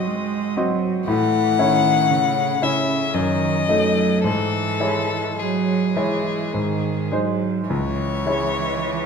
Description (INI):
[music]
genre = classical, slow romantic movement for piano trio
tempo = 51-59 BPM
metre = 3/4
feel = rubato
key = C# minor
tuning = A4 = 440 Hz
[part]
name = clear violin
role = melody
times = 0.0-9.1 s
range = G#4 to F#5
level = -23 LUFS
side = left 9 dB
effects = none
[part]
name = rich cello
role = second line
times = 0.0-9.1 s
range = C#3 to G#3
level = -24 LUFS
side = right 8 dB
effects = none
[part]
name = bright concert grand piano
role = accompaniment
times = 0.0-9.1 s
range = C#2 to D#5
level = -22 LUFS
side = left 1 dB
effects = none
[sound]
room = wet recital hall reverb, RT60 1.8 s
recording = dark, warm production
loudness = -18 LUFS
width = side -6 dB against mid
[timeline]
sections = 0.0-9.1 A section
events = none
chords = 0.0 G#7; 1.1 A; 3.1 D#dim/F#; 4.3 C#m/G#; 6.5 G#; 7.7 C#m